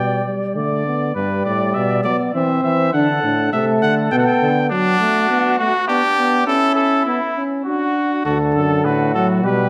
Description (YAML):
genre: classical, imitative canzona for brass ensemble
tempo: 101 BPM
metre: 3/4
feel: straight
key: G major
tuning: A4 = 440 Hz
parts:
  - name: clear trumpet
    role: melody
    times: 0.0-9.7 s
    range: D4 to G5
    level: -22 LUFS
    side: equal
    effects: none
  - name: warm flugelhorn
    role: second line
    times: 0.0-9.7 s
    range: D4 to D5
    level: -26 LUFS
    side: equal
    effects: none
  - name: mellow euphonium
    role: accompaniment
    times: 0.0-9.7 s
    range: D3 to D4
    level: -22 LUFS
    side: equal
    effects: none
  - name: warm bass trombone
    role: bass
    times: 0.0-4.7, 8.3-9.7 s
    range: D2 to F#3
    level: -25 LUFS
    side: equal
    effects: none
room: wet recital hall reverb, RT60 1.6 s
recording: none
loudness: -18 LUFS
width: mono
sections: 0.0-1.2 A section; 1.2-8.2 B section; 8.2-9.7 C section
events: none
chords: 0.0 G/B; 0.6 D5; 1.2 G; 2.3 C/E; 2.9 D; 4.1 G/B; 4.7 D/F#; 5.9 G/B; 6.5 A/C#; 7.7 D